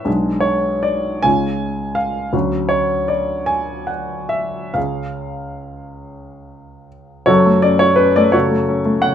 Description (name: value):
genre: classical, romantic character piece for solo piano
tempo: 45-59 BPM (dotted quarters)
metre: 6/8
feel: rubato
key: F# minor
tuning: A4 = 441 Hz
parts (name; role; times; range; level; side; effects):
- warm baby grand piano; solo; 0.0-9.1 s; F#1 to G#5; -15 LUFS; equal; none
room: light reverb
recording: minimal, uncompressed stereo recording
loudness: -15 LUFS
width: side -9 dB against mid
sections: 0.0-7.3 A section; 7.3-9.1 B section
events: none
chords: 0.1 G#dim/B; 1.2 C#; 2.3 Dmaj7; 4.8 C#; 7.3 F#m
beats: | 0.07 1.24 | 2.33 3.49 | 4.75 6.03 | 7.29 8.34